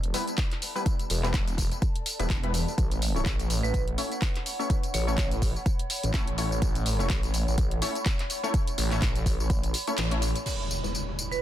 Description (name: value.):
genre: bass house.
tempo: 125 BPM.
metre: 4/4.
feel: swing 56% on 16ths.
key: unclear.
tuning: A4 = 444 Hz.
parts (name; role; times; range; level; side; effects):
phased detuned saw bass; bass; 0.0-10.3 s; E1 to A1; -28 LUFS; equal; phaser, overdrive, sidechain pumping.
garage drum kit; drums; 0.0-11.4 s; crash cymbal, handclaps, hi-hat, tambourine; -33 LUFS; equal; none.
warbly tape-like pad; texture; 0.0-11.4 s; E4 to B5; -38 LUFS; right 1 dB; chorus, built-in reverb, sidechain pumping.
orchestra-hit-like synth stab; stabs; 0.1-11.0 s; G3 to C#5; -35 LUFS; left 2 dB; built-in reverb, sidechain pumping, dub echo.
electronic kick drum; drums; 0.4-9.6 s; none; -27 LUFS; equal; none.
vibraphone with medium hard mallets; melody; 3.6-5.1, 11.3-11.4 s; B4 to C#5; -36 LUFS; moving between left 2 dB and right 8 dB; auto-pan, dub echo.
impact; sound effects; 10.5-11.4 s; none; -32 LUFS; equal; none.
room: digital ambience.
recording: dense, heavily limited modern master.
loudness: -25 LUFS.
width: side -12 dB against mid.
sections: 0.0-10.5 A section.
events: fade-in on ambient pad 0.0-10.5; filter sweep on detuned saw bass 0.0-10.5; kick drops out 10.0-10.5; band accent 10.0; impact 10.5-11.4.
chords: 0.0 Em; 2.8 A; 10.5 Em.